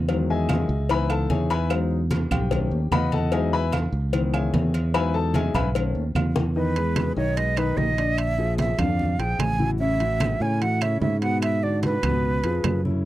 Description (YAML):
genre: Afro-Cuban jazz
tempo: 148 BPM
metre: 4/4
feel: straight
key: E major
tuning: A4 = 440 Hz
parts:
  - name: modern bright fingered electric bass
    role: bass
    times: 0.0-13.1 s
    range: A1 to A2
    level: -24 LUFS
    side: right 1 dB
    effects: none
  - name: warm baby grand piano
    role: accompaniment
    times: 0.1-13.0 s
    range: B2 to B5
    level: -27 LUFS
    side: left 4 dB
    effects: none
  - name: agogo bells and timbales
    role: percussion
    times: 0.1-12.8 s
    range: none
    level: -33 LUFS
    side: right 6 dB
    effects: none
  - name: congas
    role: percussion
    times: 0.1-13.1 s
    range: none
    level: -29 LUFS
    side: equal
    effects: none
  - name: cowbell and bongos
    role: percussion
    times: 0.1-6.6 s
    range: none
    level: -32 LUFS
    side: left 7 dB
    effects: none
  - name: claves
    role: percussion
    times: 0.5-12.8 s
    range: none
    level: -36 LUFS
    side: right 6 dB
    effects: none
  - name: breathy silver concert flute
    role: melody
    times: 6.6-12.8 s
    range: B4 to G#5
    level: -26 LUFS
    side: right 3 dB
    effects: none
room: little or no reverb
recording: dry, close 1970s-style studio recording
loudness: -21 LUFS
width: side -15 dB against mid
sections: 0.0-6.6 A section; 6.6-13.1 B section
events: grand piano solo 0.0-6.6; drum fill 6.4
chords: 0.1 Emaj7; 0.9 C#m7; 1.7 Emaj7; 2.5 B7; 3.3 Emaj7; 4.1 C#m7; 4.9 Emaj7; 5.8 B7; 6.6 Emaj7; 8.2 A#7#11; 9.8 A6; 11.4 G#m7b5; 12.2 C#7